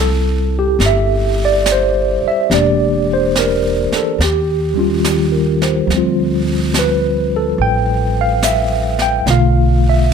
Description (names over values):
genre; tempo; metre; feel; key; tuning
jazz ballad; 71 BPM; 4/4; swing 68% on 8ths; unclear; A4 = 441 Hz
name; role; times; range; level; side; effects
tine electric piano; accompaniment; 0.0-10.1 s; B2 to G5; -14 LUFS; equal; fast stereo tremolo
upright bass; bass; 0.0-10.1 s; E1 to Eb2; -18 LUFS; equal; none
jazz brush drum kit; drums; 0.8-10.1 s; brushed snare drum, hi-hat, snare drum; -23 LUFS; right 3 dB; none
room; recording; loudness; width
light reverb; close, detailed microphones; -13 LUFS; side -6 dB against mid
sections
0.0-10.1 A section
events
none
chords
0.0 C6; 2.5 Em7b5; 4.2 Eb9; 5.9 Dm7; 9.3 Bm7b5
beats
0.79 1.64 | 2.49 3.34 4.19 5.04 | 5.89 6.73 7.58 8.42 | 9.27 10.12